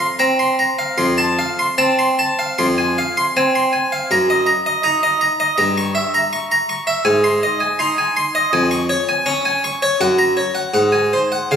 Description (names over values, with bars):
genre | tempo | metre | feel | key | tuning
classical, baroque-style suite movement for harpsichord | 80 BPM | 4/4 | uneven beats, rubato | unclear | A4 = 440 Hz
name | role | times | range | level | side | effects
harpsichord | solo | 0.0-11.6 s | F2 to Db6 | -14 LUFS | equal | none
room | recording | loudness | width
wet concert hall reverb, RT60 1.8 s | recorded on a phone in the room, studio reverb, compression | -14 LUFS | side -7 dB against mid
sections
0.0-11.6 A section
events
none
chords
0.0 Fsus4; 1.0 F; 2.6 Fm; 4.1 Ebm/Gb; 5.6 Gdim7; 7.1 Ab; 8.5 Db/F; 10.0 Gb; 10.7 Ab7